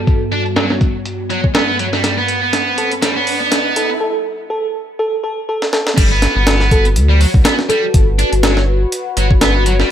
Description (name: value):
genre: breakbeat, breaks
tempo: 122 BPM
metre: 4/4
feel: swing 56% on 16ths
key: unclear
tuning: A4 = 439 Hz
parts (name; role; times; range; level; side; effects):
- bell-like FM electric piano; melody; 0.0-8.1 s; A4; -20 LUFS; right 1 dB; chorus, phaser, small speaker sound, cassette tape, low-pass filter, dub echo
- phased analog pad; sustained chords; 0.0-9.9 s; G2 to B4; -23 LUFS; left 2 dB; phaser, chorus, sidechain pumping
- riser; sound effects; 0.9-4.0 s; none; -27 LUFS; equal; none
- breakbeat sampler-style drum kit; drums; 0.1-9.9 s; crash cymbal, hi-hat, kick drum, snare drum; -15 LUFS; equal; low-pass filter on hats, studio reverb, low-pass filter on kick, low-pass filter on snare, low-pass filter on cymbals
- high-gain distorted guitar; riff; 0.3-9.9 s; F#3 to D4; -18 LUFS; right 1 dB; distortion, low-pass filter, dub echo
- saturated sub bass; bass; 6.0-9.8 s; G1 to D2; -14 LUFS; equal; none
room: light reverb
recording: high-pass filter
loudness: -12 LUFS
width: side -10 dB against mid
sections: 0.0-6.0 A section; 6.0-9.9 B section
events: build-up 0.0-6.0; filter sweep on drum 0.0-6.0; filter sweep on analog synth pad 0.0-6.0; filter sweep on FM electric piano 0.0-6.0; riser 0.9-4.0; drum fill 2.0-4.0, 5.6-6.0; break 4.0-6.0; drop 6.0-9.9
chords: 0.0 Gmaj7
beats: | 0.07 0.57 1.06 1.55 | 2.04 2.53 3.03 3.52 | 4.01 4.50 4.99 5.49 | 5.98 6.47 6.96 7.45 | 7.94 8.44 8.93 9.42 | 9.91